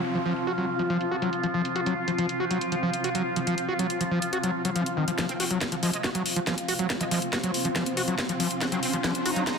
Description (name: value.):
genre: psychedelic trance.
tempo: 140 BPM.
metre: 4/4.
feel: straight.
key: unclear.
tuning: A4 = 439 Hz.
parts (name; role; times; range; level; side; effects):
overtone-sweeping drone; sustained chords; 0.0-9.6 s; F3 to F4; -31 LUFS; equal; chorus, built-in reverb, sidechain pumping.
drum and bass drum kit; drums; 0.0-9.6 s; hi-hat, snare drum; -31 LUFS; left 1 dB; overdrive, low-pass filter on hats, low-pass filter on cymbals, low-pass filter on perc, low-pass filter on snare.
downlifter and riser; sound effects; 0.0-1.8, 6.7-9.6 s; none; -39 LUFS; right 1 dB; none.
granular cloud pad; texture; 0.0-9.6 s; C4 to C6; -32 LUFS; equal; built-in reverb, sidechain pumping.
screaming distorted acid line; riff; 0.1-9.4 s; Eb3 to Gb4; -28 LUFS; moving between left 5 dB and right 5 dB; distortion, chorus, auto-pan, sidechain pumping, dub echo.
electronic kick drum; drums; 5.2-9.6 s; none; -33 LUFS; right 1 dB; high-pass filter on kick, high-pass filter on room.
metallic wobble bass; second line; 5.3-9.6 s; Ab3 to Eb4; -37 LUFS; right 3 dB; chorus, sidechain pumping, high-pass filter, dub echo.
room: wet lush hall reverb, RT60 1.6 s.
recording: dense, heavily limited modern master.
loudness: -24 LUFS.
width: side -5 dB against mid.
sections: 0.0-5.2 A section; 5.2-9.6 B section.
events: build-up 5.2-9.6; drum fill 5.2-9.6; filter sweep on synth drone 5.2-9.6.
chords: 0.0 F5.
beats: | 0.04 0.47 0.90 1.33 | 1.76 2.19 2.61 3.04 | 3.47 3.90 4.33 4.76 | 5.18 5.61 6.04 6.47 | 6.90 7.33 7.76 8.19 | 8.61 9.04 9.47.